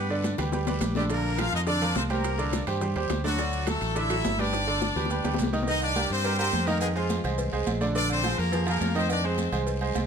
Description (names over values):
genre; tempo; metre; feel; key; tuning
latin, salsa; 210 BPM; 4/4; straight; C minor; A4 = 440 Hz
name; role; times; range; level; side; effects
brilliant horn section; melody; 0.0-9.5 s; F3 to F5; -29 LUFS; left 1 dB; none
bright concert grand piano; accompaniment; 0.0-10.0 s; D3 to Eb5; -30 LUFS; right 4 dB; none
fingered electric bass; bass; 0.0-10.1 s; G1 to G2; -29 LUFS; equal; none
bongos and cowbell; percussion; 0.1-10.1 s; none; -36 LUFS; left 8 dB; none
congas; percussion; 0.1-10.1 s; none; -35 LUFS; equal; none
guiro; percussion; 0.2-10.1 s; none; -43 LUFS; left 7 dB; none
maracas; percussion; 0.2-10.1 s; none; -45 LUFS; right 5 dB; none
timbales and agogo bells; percussion; 0.2-10.1 s; none; -37 LUFS; right 7 dB; none
room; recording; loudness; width
light reverb; none; -24 LUFS; side -7 dB against mid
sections
0.0-5.7 A section; 5.7-10.1 B section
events
drum fill 0.4-1.1, 4.5-5.7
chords
0.0 G; 1.1 Bb; 2.2 Csus2; 3.4 D; 4.5 G; 5.7 Cm7; 6.8 Bb7; 9.1 Fm7